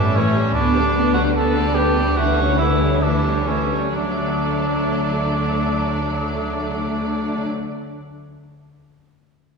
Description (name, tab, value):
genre	classical, dramatic, fast romantic movement for symphony orchestra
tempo	123-155 BPM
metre	4/4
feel	rubato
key	D major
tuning	A4 = 439 Hz
part	warm symphonic violin section	melody	0.0-7.5 s	B4 to E5	-32 LUFS	left 2 dB	none
part	warm cor anglais	second line	0.0-7.5 s	C#4 to A4	-23 LUFS	right 2 dB	none
part	warm symphonic violin section	second line	0.0-7.5 s	A3 to D4	-26 LUFS	left 2 dB	none
part	rich symphonic viola section	accompaniment	0.0-7.5 s	E3 to B3	-26 LUFS	right 1 dB	none
part	concert harp	arpeggios	0.0-7.9 s	A2 to D5	-27 LUFS	left 6 dB	none
part	rich symphonic cello section	bass	0.0-7.5 s	A2 to D3	-26 LUFS	right 1 dB	none
part	rich symphonic double bass section	bass	0.0-7.5 s	A1 to D2	-25 LUFS	right 2 dB	none
room	wet scoring stage reverb, RT60 2.1 s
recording	heard from further back in the room, small room ambience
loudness	-17 LUFS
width	side -4 dB against mid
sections	0.0-4.0 A section; 4.0-7.6 B section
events	slowing down 0.0-4.0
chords	0.0 A7; 0.6 G/D; 2.2 A7/D; 4.0 D